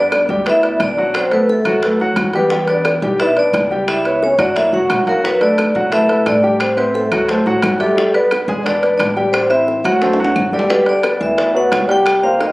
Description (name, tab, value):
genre	Afro-Cuban jazz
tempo	176 BPM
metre	4/4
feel	straight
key	G major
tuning	A4 = 437 Hz
part	vibraphone with medium hard mallets	melody	0.0-12.5 s	A4 to G5	-17 LUFS	equal	plate reverb
part	trombone with cup mute	second line	0.0-12.5 s	B2 to F#4	-20 LUFS	left 1 dB	none
part	warm grand piano	accompaniment	0.0-12.5 s	F#3 to Ab5	-17 LUFS	equal	none
part	upright bass	bass	0.0-12.5 s	E1 to B2	-26 LUFS	equal	none
part	bongos	percussion	0.1-12.5 s	none	-26 LUFS	left 2 dB	none
part	claves	percussion	0.1-12.2 s	none	-26 LUFS	equal	none
part	timbales	percussion	0.1-12.5 s	none	-24 LUFS	right 1 dB	none
room	moderate large studio reverb, RT60 0.9 s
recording	recorded on a phone in the room, club reverb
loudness	-12 LUFS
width	side -20 dB against mid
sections	0.0-10.7 A section; 10.7-12.5 B section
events	drum fill 10.0-10.7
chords	0.0 Gmaj7; 1.1 B5; 2.5 Em7; 3.9 C#m7b5; 4.6 F#; 5.2 Bm7; 6.6 Am7; 7.3 D7; 8.0 G; 8.7 E5; 9.3 Am7; 10.0 D7; 10.7 G6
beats	0.12 0.46 0.81 | 1.15 1.49 1.83 2.17 | 2.51 2.85 3.19 3.54 | 3.88 4.22 4.56 4.90 | 5.24 5.58 5.92 6.26 | 6.61 6.95 7.29 7.63 | 7.97 8.31 8.65 8.99 | 9.34 9.68 10.02 10.36 | 10.70 11.04 11.38 11.72 | 12.07 12.41